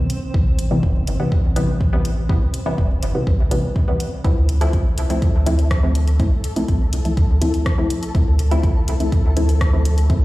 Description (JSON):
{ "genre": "dub techno", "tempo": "123 BPM", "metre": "4/4", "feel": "straight", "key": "D minor", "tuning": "A4 = 440 Hz", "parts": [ { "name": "filtered dub chord stab", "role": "stabs", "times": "0.0-10.2 s", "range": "C3 to E4", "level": "-23 LUFS", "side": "left 1 dB", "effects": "chorus, phaser, sidechain pumping, dub echo" }, { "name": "flickering grainy texture", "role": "texture", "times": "0.0-10.2 s", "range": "C4 to A4", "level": "-34 LUFS", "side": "left 1 dB", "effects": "built-in reverb, sidechain pumping" }, { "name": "deep house drum kit", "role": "drums", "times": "0.1-10.2 s", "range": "hi-hat, rim click", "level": "-32 LUFS", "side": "equal", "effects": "dub echo" }, { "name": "soft dub sub bass", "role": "bass", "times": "0.3-10.2 s", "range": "E1 to D2", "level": "-19 LUFS", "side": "equal", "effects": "sidechain pumping" }, { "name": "electronic kick drum", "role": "drums", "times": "0.3-10.2 s", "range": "none", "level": "-18 LUFS", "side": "equal", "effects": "none" } ], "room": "light reverb", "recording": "played on a big sound system in a bare room, large studio reverb", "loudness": "-16 LUFS", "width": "side -18 dB against mid", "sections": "0.0-10.2 A section", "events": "none", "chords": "0.0 Am9; 4.2 Dm9" }